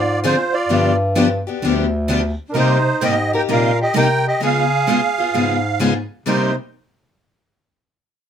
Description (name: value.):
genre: acoustic string swing (jazz manouche).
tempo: 129 BPM.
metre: 4/4.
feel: swing 64% on 8ths.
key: C minor.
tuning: A4 = 440 Hz.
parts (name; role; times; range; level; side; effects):
musette accordion; melody; 0.0-6.6 s; Bb4 to G5; -20 LUFS; right 5 dB; none.
breathy soprano saxophone; second line; 0.0-6.6 s; D4 to Bb4; -22 LUFS; equal; none.
mellow bass clarinet; bass; 0.0-6.5 s; D2 to Db3; -20 LUFS; left 1 dB; none.
picked steel-string acoustic guitar; accompaniment; 0.2-6.5 s; C3 to Ab4; -21 LUFS; left 6 dB; none.
picked steel-string acoustic guitar; accompaniment; 0.2-6.5 s; C3 to Ab4; -22 LUFS; right 2 dB; none.
room: light reverb.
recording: close, detailed microphones.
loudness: -15 LUFS.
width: side -8 dB against mid.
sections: 0.0-6.3 A section; 6.3-8.1 B section.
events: none.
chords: 0.0 Dm7b5; 0.7 G7; 2.5 Cm7; 4.4 Db7; 6.3 Cm7.